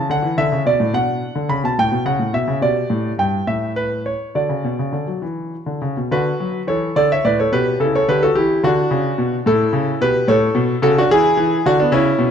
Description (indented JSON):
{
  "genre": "classical, baroque-style suite movement for grand piano",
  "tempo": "67-75 BPM (dotted quarters)",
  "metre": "6/8",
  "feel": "rubato",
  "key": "D major",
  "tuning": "A4 = 440 Hz",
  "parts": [
    { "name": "warm concert grand piano", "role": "solo", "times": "0.0-12.3 s", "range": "G2 to B5", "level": "-16 LUFS", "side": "equal", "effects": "none" }
  ],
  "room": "moderate recital hall reverb, RT60 1.7 s",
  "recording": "dark, warm production",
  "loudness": "-15 LUFS",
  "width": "side -8 dB against mid",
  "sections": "0.0-6.1 A section; 6.1-12.3 B section",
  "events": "none",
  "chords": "0.1 D5; 0.9 Bm; 1.8 A; 2.6 G; 3.5 N.C.; 4.3 D; 7.8 A/C#; 8.6 D; 9.5 A; 11.1 E",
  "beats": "0.11 | 0.94 1.77 | 2.61 3.46 | 4.34 5.22 | 6.10 6.95 | 7.80 8.63 | 9.46 10.28 | 11.10 11.91"
}